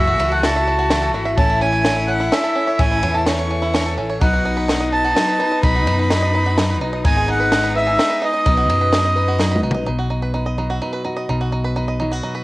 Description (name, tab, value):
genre	indie folk with a building arrangement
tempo	127 BPM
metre	3/4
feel	straight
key	B mixolydian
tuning	A4 = 443 Hz
part	accordion	melody	0.0-9.6 s	D#5 to C#6	-19 LUFS	right 1 dB	cassette tape
part	warm cello	second line	0.0-9.6 s	B3 to F#4	-26 LUFS	left 2 dB	cassette tape
part	picked twelve-string acoustic guitar	accompaniment	0.0-9.9 s	F#2 to B4	-25 LUFS	left 3 dB	cassette tape
part	bluegrass banjo	arpeggios	0.0-12.4 s	B3 to E5	-25 LUFS	right 3 dB	cassette tape
part	fingered electric bass	bass	0.0-12.2 s	F#1 to F#2	-22 LUFS	equal	none
part	compact cocktail drum kit	drums	0.2-9.8 s	kick drum, ride cymbal, snare drum, toms	-22 LUFS	equal	cassette tape
part	fingerpicked steel-string acoustic guitar	accompaniment	9.9-12.4 s	B2 to B4	-24 LUFS	left 1 dB	cassette tape
room	light reverb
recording	home recording on cassette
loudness	-15 LUFS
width	side -19 dB against mid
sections	0.0-9.9 A section; 9.9-12.4 B section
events	drum fill 9.4-9.9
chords	0.0 F#m7; 1.4 A; 4.2 B; 7.0 G#m; 8.5 B